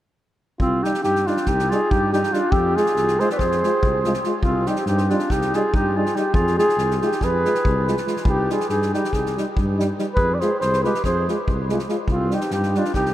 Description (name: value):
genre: balkan folk, Balkan brass band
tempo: 282 BPM (eighths)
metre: 9/8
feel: straight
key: C harmonic minor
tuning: A4 = 440 Hz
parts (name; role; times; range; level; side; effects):
- mellow flugelhorn; melody; 0.6-13.1 s; F4 to D5; -22 LUFS; equal; none
- warm clarinet; second line; 0.6-13.1 s; C4 to B4; -26 LUFS; right 2 dB; none
- mellow tuba; bass; 0.6-13.1 s; C2 to G2; -24 LUFS; equal; none
- natural country drum kit; percussion; 0.6-13.1 s; kick drum, snare drum; -26 LUFS; equal; none
- warm euphonium; accompaniment; 0.8-12.8 s; Eb4 to F4; -31 LUFS; left 5 dB; none
- warm euphonium; accompaniment; 0.8-12.8 s; G3 to Ab3; -28 LUFS; right 3 dB; none
room: wet huge ambient reverb, RT60 8.9 s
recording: in a vast, echoing space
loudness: -18 LUFS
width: side -13 dB against mid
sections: 0.6-13.1 A section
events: none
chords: 0.6 Cm; 2.5 Fm; 4.4 Cm; 6.3 Fm; 8.3 Cm; 10.2 Fm; 12.1 Cm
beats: | 0.60 0.81 1.02 1.24 1.45 1.66 1.88 2.09 2.30 | 2.51 2.72 2.94 3.15 3.36 3.57 3.79 4.00 4.21 | 4.42 4.64 4.85 5.06 5.27 5.49 5.70 5.91 6.12 | 6.34 6.55 6.76 6.97 7.19 7.40 7.61 7.83 8.04 | 8.25 8.46 8.68 8.89 9.10 9.31 9.53 9.74 9.95 | 10.17 10.38 10.59 10.80 11.02 11.23 11.44 11.65 11.87 | 12.08 12.29 12.50 12.72 12.93